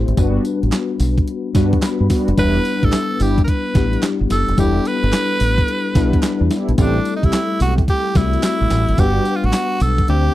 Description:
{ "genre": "R&B, new jack swing", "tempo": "109 BPM", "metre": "4/4", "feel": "swing 65% on 16ths", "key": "E minor", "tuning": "A4 = 439 Hz", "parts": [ { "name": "bell-like tine electric piano", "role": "accompaniment", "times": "0.0-10.3 s", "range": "G3 to B5", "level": "-21 LUFS", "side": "left 5 dB", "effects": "ensemble chorus" }, { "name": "deep dub fingered electric bass", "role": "bass", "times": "0.0-10.3 s", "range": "E1 to G2", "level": "-18 LUFS", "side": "right 1 dB", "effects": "none" }, { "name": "crisp 8-bit digital drum machine", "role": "drums", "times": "0.1-10.2 s", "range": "handclaps, hi-hat, kick drum, snare drum, tambourine", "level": "-18 LUFS", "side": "equal", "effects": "overdrive" }, { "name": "mellow synth brass", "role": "stabs", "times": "0.2-9.2 s", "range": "G3 to G4", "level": "-24 LUFS", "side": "right 2 dB", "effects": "chorus" }, { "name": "group handclap", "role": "percussion", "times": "0.7-9.7 s", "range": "none", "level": "-35 LUFS", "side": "right 9 dB", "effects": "none" }, { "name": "raspy tenor saxophone", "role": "melody", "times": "2.4-10.3 s", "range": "D4 to B4", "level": "-21 LUFS", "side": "right 2 dB", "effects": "slapback echo" } ], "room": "little or no reverb", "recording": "dry, close 1970s-style studio recording", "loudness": "-15 LUFS", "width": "side -15 dB against mid", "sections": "0.0-10.3 A section", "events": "tine electric piano fill 1.6-2.4", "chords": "0.2 Gmaj7; 2.4 Em7; 6.8 Am7; 9.0 Gmaj7", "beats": "| 0.17 0.72 1.27 1.82 | 2.38 2.93 3.48 4.03 | 4.58 5.13 5.68 6.23 | 6.78 7.33 7.88 8.43 | 8.98 9.53 10.08" }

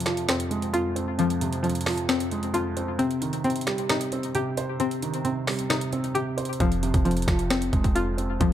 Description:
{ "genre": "hip hop, trap", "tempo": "133 BPM", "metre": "4/4", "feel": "half-time", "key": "F minor", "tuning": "A4 = 440 Hz", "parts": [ { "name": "felt-muted upright piano", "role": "accompaniment", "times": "0.0-8.5 s", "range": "F2 to C5", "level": "-28 LUFS", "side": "right 3 dB", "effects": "low-pass filter" }, { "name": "string-like resonator pluck", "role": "arpeggios", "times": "0.0-8.5 s", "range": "F3 to G4", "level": "-27 LUFS", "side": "left 4 dB", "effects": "chorus, low-pass filter, ping-pong delay" }, { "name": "trap drum kit", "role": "drums", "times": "0.0-8.5 s", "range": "finger snaps, hi-hat, kick drum, snare drum", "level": "-28 LUFS", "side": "right 1 dB", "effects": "none" }, { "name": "clean 808-style bass", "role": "bass", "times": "6.6-8.5 s", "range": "F1", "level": "-28 LUFS", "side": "equal", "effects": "none" } ], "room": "light reverb", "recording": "dark, warm production", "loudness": "-23 LUFS", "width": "side -11 dB against mid", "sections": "0.0-8.5 A section", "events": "break 0.0-6.6", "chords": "0.0 Fm; 3.0 Cm; 6.6 Fm", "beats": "0.29 0.74 | 1.19 1.64 2.09 2.54 | 2.99 3.44 3.90 4.35 | 4.80 5.25 5.70 6.15 | 6.60 7.05 7.50 7.96 | 8.41" }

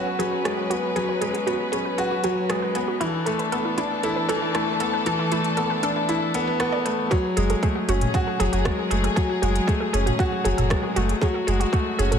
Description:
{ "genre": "piano and strings electronica", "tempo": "117 BPM", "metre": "4/4", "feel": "straight", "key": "F# minor", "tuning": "A4 = 439 Hz", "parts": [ { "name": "warm chamber string section", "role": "sustained chords", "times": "0.0-12.2 s", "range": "E3 to B4", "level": "-28 LUFS", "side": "left 1 dB", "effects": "sidechain pumping" }, { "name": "clear grand piano", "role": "riff", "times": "0.0-12.2 s", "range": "E3 to F#4", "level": "-25 LUFS", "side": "left 2 dB", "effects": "ping-pong delay" }, { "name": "wide unison pluck", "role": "arpeggios", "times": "0.2-12.2 s", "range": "E4 to D5", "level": "-28 LUFS", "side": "right 4 dB", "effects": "sidechain pumping, ping-pong delay" }, { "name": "organic electronic drum kit", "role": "drums", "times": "0.2-12.2 s", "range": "hi-hat, rim click, toms", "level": "-32 LUFS", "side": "equal", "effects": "overdrive, high-pass filter on hats, high-pass filter on snare, high-pass filter on toms, high-pass filter on room" }, { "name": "electronic kick drum", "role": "drums", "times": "7.1-11.8 s", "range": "none", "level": "-24 LUFS", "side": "right 1 dB", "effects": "overdrive" }, { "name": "warm sub bass", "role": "bass", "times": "7.4-12.2 s", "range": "F#1", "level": "-23 LUFS", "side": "right 1 dB", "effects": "tube saturation, sidechain pumping" } ], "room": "moderate recital hall reverb, RT60 1.6 s, digital ambience", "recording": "none", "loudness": "-21 LUFS", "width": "side -7 dB against mid", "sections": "0.0-7.1 A section; 7.1-12.2 B section", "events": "build-up 0.0-7.1; filter sweep on synth arpeggio sound 0.0-7.1; drop 7.1-12.2", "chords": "0.0 C#7sus4; 3.0 E7sus4; 7.1 F#madd9", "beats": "0.45 | 0.96 1.47 1.99 2.50 | 3.01 3.53 4.04 4.55 | 5.06 5.58 6.09 6.60 | 7.12 7.63 8.14 8.65 | 9.17 9.68 10.19 10.71 | 11.22 11.73" }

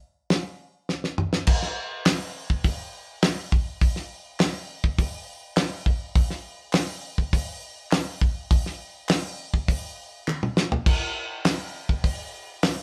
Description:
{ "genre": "rock", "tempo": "102 BPM", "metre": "4/4", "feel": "straight", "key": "none", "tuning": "none", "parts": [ { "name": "damped 70s drum kit", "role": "drums", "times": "0.3-12.8 s", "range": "crash cymbal, hi-hat, kick drum, snare drum, toms", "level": "-26 LUFS", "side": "equal", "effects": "none" }, { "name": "group handclap", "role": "percussion", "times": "2.1-12.8 s", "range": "none", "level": "-38 LUFS", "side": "equal", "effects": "none" } ], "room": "moderate studio reverb, RT60 0.6 s", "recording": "band playing live in one room", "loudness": "-26 LUFS", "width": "mono", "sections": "0.0-1.5 A section; 1.5-12.8 B section", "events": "half time 0.0-1.5; drum fill 0.9-1.5, 10.3-10.9", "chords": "none", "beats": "0.30 0.89 | 1.48 2.06 2.65 3.23 | 3.82 4.40 4.99 5.57 | 6.16 6.74 7.33 7.92 | 8.51 9.09 9.68 10.27 | 10.86 11.45 12.04 12.63" }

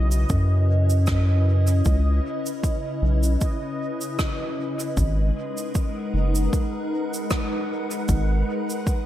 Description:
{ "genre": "ambient dub", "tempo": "77 BPM", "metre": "4/4", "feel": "swing 55% on 16ths", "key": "unclear", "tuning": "A4 = 440 Hz", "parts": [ { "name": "soft additive organ-like pad", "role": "sustained chords", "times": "0.0-9.1 s", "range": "C#3 to F#5", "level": "-28 LUFS", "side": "left 1 dB", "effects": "ensemble chorus, built-in reverb" }, { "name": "round analog bass", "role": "bass", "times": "0.0-8.4 s", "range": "F#1 to F#2", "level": "-19 LUFS", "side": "equal", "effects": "none" }, { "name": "bubbling stepped-filter texture", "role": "texture", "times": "0.0-9.1 s", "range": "D#5", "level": "-35 LUFS", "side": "right 4 dB", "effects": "chorus, built-in reverb" }, { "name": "shaker and rim click", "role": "drums", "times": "0.1-9.0 s", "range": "none", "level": "-33 LUFS", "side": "right 1 dB", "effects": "studio reverb, dub echo" }, { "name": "electronic kick drum", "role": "drums", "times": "0.3-9.0 s", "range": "none", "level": "-24 LUFS", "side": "equal", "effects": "overdrive, studio reverb" } ], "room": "small room ambience", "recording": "none", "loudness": "-21 LUFS", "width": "side -13 dB against mid", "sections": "0.0-9.1 A section", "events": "none", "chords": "0.0 C#m7; 5.0 G#m7", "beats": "0.29 1.07 | 1.85 2.63 3.41 4.19 | 4.97 5.75 6.53 7.31 | 8.09 8.87" }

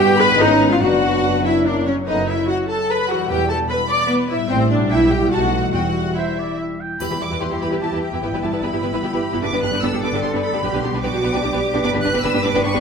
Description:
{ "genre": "classical, dramatic, fast romantic movement for symphony orchestra", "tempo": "148 BPM", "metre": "3/4", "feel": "straight", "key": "E minor", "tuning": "A4 = 440 Hz", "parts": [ { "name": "warm symphonic violin section", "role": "melody", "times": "0.0-12.8 s", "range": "A#4 to F#6", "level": "-27 LUFS", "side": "left 1 dB", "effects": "none" }, { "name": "mellow hollow large flute ensemble", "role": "second line", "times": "0.0-6.6 s", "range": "B4 to D6", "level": "-26 LUFS", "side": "left 2 dB", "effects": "none" }, { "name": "rich symphonic violin section", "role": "second line", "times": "0.0-12.8 s", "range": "D4 to D6", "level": "-26 LUFS", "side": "left 1 dB", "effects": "none" }, { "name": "clear symphonic viola section", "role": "accompaniment", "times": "0.0-12.8 s", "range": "E3 to D5", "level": "-20 LUFS", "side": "equal", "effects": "none" }, { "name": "mellow French horn section", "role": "sustained chords", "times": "0.0-6.8 s", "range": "G3 to E4", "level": "-24 LUFS", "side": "left 3 dB", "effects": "none" }, { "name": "concert harp", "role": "arpeggios", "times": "0.0-12.8 s", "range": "E2 to B5", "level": "-27 LUFS", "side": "left 6 dB", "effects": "none" }, { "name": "rich symphonic double bass section", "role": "bass", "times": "0.0-12.8 s", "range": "E1 to E2", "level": "-27 LUFS", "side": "right 4 dB", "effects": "none" }, { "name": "warm symphonic cello section", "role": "bass", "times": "0.0-12.8 s", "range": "E2 to B4", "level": "-26 LUFS", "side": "right 3 dB", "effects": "none" }, { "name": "timpani", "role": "percussion", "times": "3.3-6.3, 10.6-11.2 s", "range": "E2 to B2", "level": "-35 LUFS", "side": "left 2 dB", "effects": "none" }, { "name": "warm oboe", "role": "second line", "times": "6.2-7.0 s", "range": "C5 to G5", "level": "-31 LUFS", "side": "right 3 dB", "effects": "none" }, { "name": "triangle", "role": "percussion", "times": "7.0-7.8 s", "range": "none", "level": "-41 LUFS", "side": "left 1 dB", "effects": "none" } ], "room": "wet recital hall reverb, RT60 1.4 s", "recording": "none", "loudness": "-16 LUFS", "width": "side -6 dB against mid", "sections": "0.0-7.0 A section; 7.0-12.8 B section", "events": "none", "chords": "0.4 C#7/G#; 0.8 Bm/F#; 1.7 F#; 2.1 B5/F#; 3.3 Em; 4.5 Am7; 4.9 Em/B; 5.3 B7b9; 5.7 Em; 8.2 Em/G; 9.4 G; 10.6 G/B; 11.8 G", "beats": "0.40 | 0.82 1.24 1.65 | 2.07 2.49 2.89 | 3.30 3.71 4.10 | 4.50 4.91 5.32 | 5.74 6.16 6.58 | 7.00 7.42 7.82 | 8.23 8.63 9.03 | 9.43 9.83 10.23 | 10.63 11.03 11.44 | 11.84 12.24 12.64" }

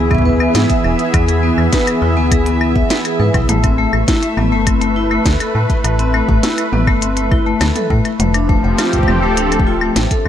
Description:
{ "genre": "IDM", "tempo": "102 BPM", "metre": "4/4", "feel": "straight", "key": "unclear", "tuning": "A4 = 440 Hz", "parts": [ { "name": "warm analog pad", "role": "sustained chords", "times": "0.0-10.3 s", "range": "E3 to B4", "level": "-20 LUFS", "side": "right 1 dB", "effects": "chorus" }, { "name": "vibraphone with medium hard mallets", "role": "arpeggios", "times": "0.0-10.3 s", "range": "A3 to E5", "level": "-18 LUFS", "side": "left 3 dB", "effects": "digital delay" }, { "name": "metallic FM bass", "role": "bass", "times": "0.0-10.3 s", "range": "D1 to A2", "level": "-17 LUFS", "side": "equal", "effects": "none" }, { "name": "bubbling stepped-filter texture", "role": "texture", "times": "0.0-10.3 s", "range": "E5", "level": "-25 LUFS", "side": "right 3 dB", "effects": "chorus, built-in reverb" }, { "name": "electronic kick drum", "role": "drums", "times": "0.1-10.2 s", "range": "none", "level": "-16 LUFS", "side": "equal", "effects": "none" }, { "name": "glitchy drum kit", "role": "drums", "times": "0.1-10.3 s", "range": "claves, hi-hat, snare drum, toms", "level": "-21 LUFS", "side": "equal", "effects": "none" } ], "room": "light reverb", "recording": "lossy compression artefacts", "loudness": "-12 LUFS", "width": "side -10 dB against mid", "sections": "0.0-10.3 A section", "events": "none", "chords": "0.0 E; 3.5 Asus2; 8.2 F6", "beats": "0.55 | 1.14 1.73 2.31 2.90 | 3.49 4.08 4.67 5.26 | 5.84 6.43 7.02 7.61 | 8.20 8.79 9.37 9.96" }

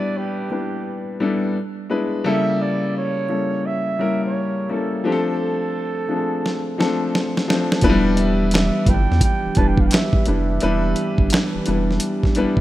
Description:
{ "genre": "R&B, neo-soul", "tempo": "86 BPM", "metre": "4/4", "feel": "swing 63% on 16ths", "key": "unclear", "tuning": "A4 = 440 Hz", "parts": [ { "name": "breathy flugelhorn", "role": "melody", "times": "0.0-11.6 s", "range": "G4 to A5", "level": "-26 LUFS", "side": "right 4 dB", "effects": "none" }, { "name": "warm upright piano", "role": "accompaniment", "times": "0.0-12.6 s", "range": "C#3 to C5", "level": "-21 LUFS", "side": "left 2 dB", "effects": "none" }, { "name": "dusty soul sampler-style drum kit", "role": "drums", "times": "6.5-12.6 s", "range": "handclaps, hi-hat, kick drum, snare drum", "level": "-19 LUFS", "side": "right 1 dB", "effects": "none" }, { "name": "hollow soft pad", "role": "sustained chords", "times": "7.8-12.6 s", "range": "E3 to G4", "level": "-27 LUFS", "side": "right 4 dB", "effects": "chorus" }, { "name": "warm sub bass", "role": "bass", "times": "7.8-12.6 s", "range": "E1 to E2", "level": "-21 LUFS", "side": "right 1 dB", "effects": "none" } ], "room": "light reverb, digital ambience", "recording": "rough home demo mix", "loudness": "-18 LUFS", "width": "side -15 dB against mid", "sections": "0.0-12.6 A section", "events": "drum fill 6.4-7.8; upright piano fill 12.4", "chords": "0.0 Em7; 1.5 E7; 2.2 A7b9; 5.0 Dm7; 7.8 Em7", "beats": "0.15 0.85 1.54 | 2.24 2.94 3.64 4.33 | 5.03 5.73 6.43 7.13 | 7.82 8.52 9.22 9.92 | 10.61 11.31 12.01" }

